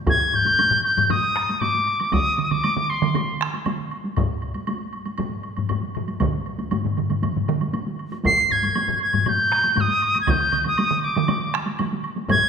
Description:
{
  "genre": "japanese traditional, taiko drum ensemble",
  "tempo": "118 BPM",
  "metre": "4/4",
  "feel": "straight",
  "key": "G miyako bushi",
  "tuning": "A4 = 440 Hz",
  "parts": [
    { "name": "bright piccolo", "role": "melody", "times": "0.1-3.4, 8.3-12.5 s", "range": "C6 to C7", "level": "-20 LUFS", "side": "equal", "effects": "none" },
    { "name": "taiko ensemble", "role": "percussion", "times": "0.1-12.4 s", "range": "none", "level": "-29 LUFS", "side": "equal", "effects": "none" },
    { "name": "taiko ensemble", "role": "percussion", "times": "0.1-12.4 s", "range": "none", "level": "-27 LUFS", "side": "left 5 dB", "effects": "none" },
    { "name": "taiko ensemble", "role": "percussion", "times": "0.1-12.4 s", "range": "none", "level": "-25 LUFS", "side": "equal", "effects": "none" },
    { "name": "woodblock", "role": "percussion", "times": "0.1-12.4 s", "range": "none", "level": "-33 LUFS", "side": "right 4 dB", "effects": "none" },
    { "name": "taiko ensemble", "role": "percussion", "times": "2.1-11.9 s", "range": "none", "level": "-26 LUFS", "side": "right 6 dB", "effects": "none" }
  ],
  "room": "wet scoring stage reverb, RT60 1.8 s",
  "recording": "minimal, uncompressed stereo recording",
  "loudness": "-19 LUFS",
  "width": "side -6 dB against mid",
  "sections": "0.1-12.5 A section",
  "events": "none",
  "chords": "none",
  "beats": "| 0.07 0.58 1.10 1.61 | 2.12 2.63 3.15 3.66 | 4.17 4.68 5.19 5.70 | 6.21 6.72 7.23 7.74 | 8.25 8.76 9.26 9.77 | 10.28 10.78 11.29 11.79 | 12.29"
}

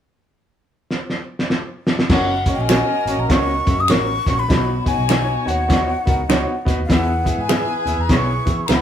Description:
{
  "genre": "uptempo 1960s-style soul",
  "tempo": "100 BPM",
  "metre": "4/4",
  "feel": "swing 61% on 8ths",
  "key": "F# mixolydian",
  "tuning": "A4 = 442 Hz",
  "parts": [
    { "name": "cloth-damped thuddy drum kit", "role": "drums", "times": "0.9-8.8 s", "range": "crash cymbal, hi-hat, kick drum, snare drum", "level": "-19 LUFS", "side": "equal", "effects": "none" },
    { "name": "breathy mellow silver concert flute", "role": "melody", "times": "2.1-8.8 s", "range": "E#5 to D#6", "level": "-22 LUFS", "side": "left 3 dB", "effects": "none" },
    { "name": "warm horn section", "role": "second line", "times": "2.1-8.8 s", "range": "D#4 to D#5", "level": "-28 LUFS", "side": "right 3 dB", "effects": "none" },
    { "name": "clear upright piano", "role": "accompaniment", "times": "2.1-8.8 s", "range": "B2 to F#5", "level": "-24 LUFS", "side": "left 1 dB", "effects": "none" },
    { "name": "vintage muted fingered electric bass", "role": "bass", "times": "2.1-8.8 s", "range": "F#1 to E3", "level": "-24 LUFS", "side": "equal", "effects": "none" },
    { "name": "clean electric guitar", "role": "stabs", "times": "2.7-8.8 s", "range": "D#4 to E5", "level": "-23 LUFS", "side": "right 4 dB", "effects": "tremolo" },
    { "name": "finger snap", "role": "percussion", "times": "2.7-8.8 s", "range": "none", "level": "-28 LUFS", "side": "left 6 dB", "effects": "none" }
  ],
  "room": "wet studio reverb, RT60 0.6 s",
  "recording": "band playing live in one room",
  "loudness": "-16 LUFS",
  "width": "side -9 dB against mid",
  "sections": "0.0-2.1 A section; 2.1-8.8 B section",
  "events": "drum fill 0.9-2.1",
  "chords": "0.0 N.C.; 2.1 F#; 4.5 Badd9; 6.9 E",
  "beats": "0.30 0.90 1.50 | 2.10 2.70 3.30 3.90 | 4.50 5.10 5.70 6.30 | 6.90 7.50 8.10 8.70"
}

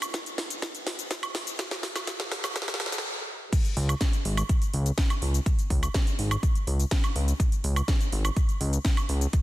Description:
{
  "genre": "progressive house",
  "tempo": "124 BPM",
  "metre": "4/4",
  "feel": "straight",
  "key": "unclear",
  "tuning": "A4 = 440 Hz",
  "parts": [
    { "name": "house drum kit", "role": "drums", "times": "0.0-9.4 s", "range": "crash cymbal, hi-hat, shaker, snare drum, woodblock", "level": "-31 LUFS", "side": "right 1 dB", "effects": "sidechain pumping on hats, sidechain pumping on perc, sidechain pumping on cymbals" },
    { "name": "electronic kick drum", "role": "drums", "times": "0.1-9.4 s", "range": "none", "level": "-25 LUFS", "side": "equal", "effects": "high-pass filter on kick, high-pass filter on room" },
    { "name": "fat analog bass", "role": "bass", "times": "3.8-9.3 s", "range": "Ab1 to Db2", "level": "-25 LUFS", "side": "equal", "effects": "sidechain pumping" }
  ],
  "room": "light reverb, digital ambience",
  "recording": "dense, heavily limited modern master, high-pass filter",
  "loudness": "-25 LUFS",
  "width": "side -16 dB against mid",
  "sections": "0.0-3.5 A section; 3.5-9.4 B section",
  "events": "build-up 0.0-3.5; drum fill 0.0-3.0; stop 3.0-3.5; drop 3.5-9.4",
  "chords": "none",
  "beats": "0.14 0.62 1.11 | 1.59 2.08 2.56 3.04 | 3.53 4.01 4.49 4.98 | 5.46 5.95 6.43 6.91 | 7.40 7.88 8.37 8.85 | 9.33"
}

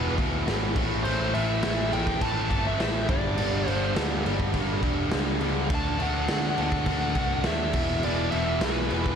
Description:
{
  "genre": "hard rock",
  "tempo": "103 BPM",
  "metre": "4/4",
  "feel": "straight",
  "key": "unclear",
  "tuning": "A4 = 440 Hz",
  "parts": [
    { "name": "bluesy overdriven lead guitar", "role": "melody", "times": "0.0-9.2 s", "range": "B4 to A5", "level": "-31 LUFS", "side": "right 1 dB", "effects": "distortion, slapback echo" },
    { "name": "distorted electric guitar", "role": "riff", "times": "0.0-9.2 s", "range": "E2 to D4", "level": "-31 LUFS", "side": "left 11 dB", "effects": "overdrive, slapback echo" },
    { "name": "tight distorted guitar", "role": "riff", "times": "0.0-9.2 s", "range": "E2 to D4", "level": "-32 LUFS", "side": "right 10 dB", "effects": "distortion, slapback echo" },
    { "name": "picked electric bass", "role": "bass", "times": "0.0-9.2 s", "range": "E1 to D#2", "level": "-30 LUFS", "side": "equal", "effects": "none" },
    { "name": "raw garage drum kit", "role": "drums", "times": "0.2-9.2 s", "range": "crash cymbal, kick drum, snare drum", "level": "-28 LUFS", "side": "equal", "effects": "none" }
  ],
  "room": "moderate lush hall reverb, RT60 1.9 s",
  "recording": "big arena sound",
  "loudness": "-23 LUFS",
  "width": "side -7 dB against mid",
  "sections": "0.0-9.2 A section",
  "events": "none",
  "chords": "0.0 E5; 0.8 A5; 3.1 G5; 5.7 D; 7.7 E5",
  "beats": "0.47 | 1.05 1.63 2.21 2.80 | 3.38 3.96 4.54 5.12 | 5.71 6.29 6.87 7.46 | 8.04 8.62"
}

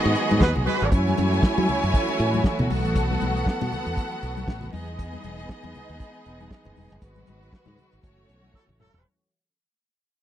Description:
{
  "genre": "disco",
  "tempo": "118 BPM",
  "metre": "4/4",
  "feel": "swing 56% on 16ths",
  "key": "F# dorian",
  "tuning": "A4 = 444 Hz",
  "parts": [
    { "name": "clear studio string section", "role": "second line", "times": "0.0-9.0 s", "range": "G#3 to G#5", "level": "-28 LUFS", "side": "right 1 dB", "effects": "none" },
    { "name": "rich studio string section", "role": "sustained chords", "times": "0.0-9.0 s", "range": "D#3 to G#4", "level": "-31 LUFS", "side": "right 1 dB", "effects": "none" },
    { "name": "fingered electric bass", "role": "bass", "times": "0.1-9.0 s", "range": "E1 to F#3", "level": "-25 LUFS", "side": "equal", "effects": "none" },
    { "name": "congas", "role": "percussion", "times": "0.1-8.9 s", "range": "none", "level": "-32 LUFS", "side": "left 7 dB", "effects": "none" },
    { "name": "warm soul drum kit", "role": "drums", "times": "0.2-9.0 s", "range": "hi-hat, kick drum, snare drum, toms", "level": "-22 LUFS", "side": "equal", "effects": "none" },
    { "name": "clear horn section", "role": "stabs", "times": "0.4-0.9, 8.5-9.0 s", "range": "F#3 to B4", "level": "-24 LUFS", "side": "right 2 dB", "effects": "none" }
  ],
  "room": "little or no reverb",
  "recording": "dry, close 1970s-style studio recording",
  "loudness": "-21 LUFS",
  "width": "side -11 dB against mid",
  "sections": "0.0-9.1 A section",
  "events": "fade-out 0.0-9.1; band accent 0.0-0.9, 7.0-9.1; drum fill 8.5-9.1",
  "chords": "0.0 G#m7; 0.9 F#m7; 2.7 B7sus4; 4.7 Emaj7; 7.0 G#m7; 8.0 F#m7",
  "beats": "0.41 | 0.92 1.42 1.93 2.44 | 2.95 3.46 3.97 4.47 | 4.98 5.49 6.00 6.51 | 7.02 7.53 8.04 8.54"
}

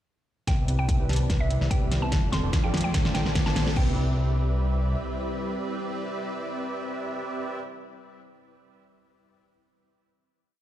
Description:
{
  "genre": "future bass",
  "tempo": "146 BPM",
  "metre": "4/4",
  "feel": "half-time",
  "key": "C major",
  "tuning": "A4 = 436 Hz",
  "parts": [
    { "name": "mallet-like synth pluck", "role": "melody", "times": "0.5-7.6 s", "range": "E5 to C6", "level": "-35 LUFS", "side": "equal", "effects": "chorus, sidechain pumping, tape echo" },
    { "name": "ethereal airy pad", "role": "sustained chords", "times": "1.2-7.6 s", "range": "G3 to B4", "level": "-38 LUFS", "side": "left 1 dB", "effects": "ensemble chorus, built-in reverb, tremolo, sidechain pumping" },
    { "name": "thumb-piano-like synth pluck", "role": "arpeggios", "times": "0.5-4.0 s", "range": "A3 to G4", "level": "-41 LUFS", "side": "right 1 dB", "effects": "none" },
    { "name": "big bright polysynth", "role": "riff", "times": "0.5-7.6 s", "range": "F3 to C6", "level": "-34 LUFS", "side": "right 1 dB", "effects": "lush chorus, sidechain pumping, ping-pong delay" },
    { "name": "fat analog bass", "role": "bass", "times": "0.5-5.0 s", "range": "F1 to F2", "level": "-26 LUFS", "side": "equal", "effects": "sidechain pumping" },
    { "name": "electronic kick drum", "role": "drums", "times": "0.5-3.9 s", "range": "none", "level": "-26 LUFS", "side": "equal", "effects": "small room reverb" },
    { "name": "pop drum kit", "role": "drums", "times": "0.5-3.9 s", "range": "crash cymbal, hi-hat, snare drum", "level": "-30 LUFS", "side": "equal", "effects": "small room reverb" },
    { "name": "riser", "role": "sound effects", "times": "1.8-3.8 s", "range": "none", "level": "-38 LUFS", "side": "right 1 dB", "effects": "none" },
    { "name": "dark concert grand piano", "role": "accompaniment", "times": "0.7-7.6 s", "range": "Bb2 to B4", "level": "-39 LUFS", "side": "right 2 dB", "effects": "sidechain pumping, ping-pong delay" }
  ],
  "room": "light reverb, digital ambience",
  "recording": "played on a big sound system in a bare room, large studio reverb",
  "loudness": "-24 LUFS",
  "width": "side -12 dB against mid",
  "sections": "0.5-3.8 build; 3.8-7.1 final chord",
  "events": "build-up 0.5-3.8; drum fill 0.5-3.8; filter sweep on analog polysynth 0.5-3.8; riser 1.8-3.8",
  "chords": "0.5 Cmaj7; 2.1 F6; 2.9 Bbmaj7; 3.8 Cmaj7",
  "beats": "| 0.47 0.89 1.30 1.71 | 2.12 2.53 2.94 3.35 | 3.76 4.17 4.58 5.00 | 5.41 5.82 6.23 6.64"
}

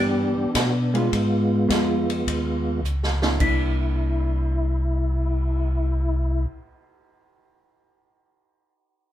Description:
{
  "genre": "soul jazz organ trio",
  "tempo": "105 BPM",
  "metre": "4/4",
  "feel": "swing 69% on 8ths",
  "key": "unclear",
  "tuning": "A4 = 439 Hz",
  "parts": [
    { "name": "percussive tonewheel organ", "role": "melody", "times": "0.0-6.5 s", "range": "Ab3 to G4", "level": "-25 LUFS", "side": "equal", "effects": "slow rotary speaker, chorus vibrato" },
    { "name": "hollow-body jazz guitar", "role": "accompaniment", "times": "0.0-7.2 s", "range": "E3 to G4", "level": "-28 LUFS", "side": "right 2 dB", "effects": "none" },
    { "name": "mellow tonewheel organ", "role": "bass", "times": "0.0-6.5 s", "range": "C2 to B2", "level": "-23 LUFS", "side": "equal", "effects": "chorus vibrato, slow rotary speaker" },
    { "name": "swinging big-band drum kit", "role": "drums", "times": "0.5-5.6 s", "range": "crash cymbal, cymbal swell, hi-hat, kick drum, ride cymbal, snare drum", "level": "-28 LUFS", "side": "equal", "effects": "none" }
  ],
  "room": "light reverb",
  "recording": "band playing live in one room",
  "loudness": "-20 LUFS",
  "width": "side -12 dB against mid",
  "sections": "0.0-3.4 A section; 3.4-5.7 B section",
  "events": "drum fill 2.8-3.4",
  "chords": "0.0 Em7; 1.1 Db7; 3.4 C9",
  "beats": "0.54 | 1.11 1.68 2.26 2.83 | 3.40 3.98 4.55 5.12"
}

